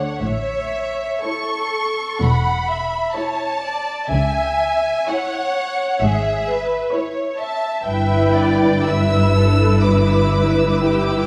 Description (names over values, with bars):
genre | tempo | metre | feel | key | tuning
classical, slow romantic movement for string orchestra | 56-67 BPM | 4/4 | rubato | A major | A4 = 440 Hz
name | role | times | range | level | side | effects
warm symphonic violin section | melody | 0.0-11.3 s | E5 to E6 | -26 LUFS | equal | none
rich symphonic violin section | second line | 0.0-11.3 s | G4 to F#5 | -25 LUFS | equal | none
dark symphonic double bass section | bass | 0.2-11.3 s | E1 to C#2 | -23 LUFS | equal | none
rich symphonic cello section | bass | 0.2-11.3 s | E2 to C#3 | -24 LUFS | equal | none
warm symphonic viola section | accompaniment | 1.2-11.3 s | E4 to C#5 | -23 LUFS | equal | none
room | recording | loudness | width
wet scoring stage reverb, RT60 1.5 s | vinyl crackle | -19 LUFS | mono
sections
0.2-11.3 A section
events
none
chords
0.2 A; 4.1 C#m; 7.9 Em/G